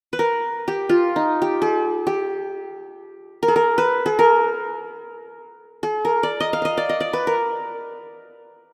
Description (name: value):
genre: arabic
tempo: free time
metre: none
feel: none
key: unclear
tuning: A4 = 440 Hz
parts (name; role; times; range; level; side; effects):
- qanun; melody; 0.1-8.4 s; Eb4 to F5; -21 LUFS; equal; none
room: wet lush hall reverb, RT60 2.7 s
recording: rough home demo mix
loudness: -21 LUFS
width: mono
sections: 0.0-8.7 A section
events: none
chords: none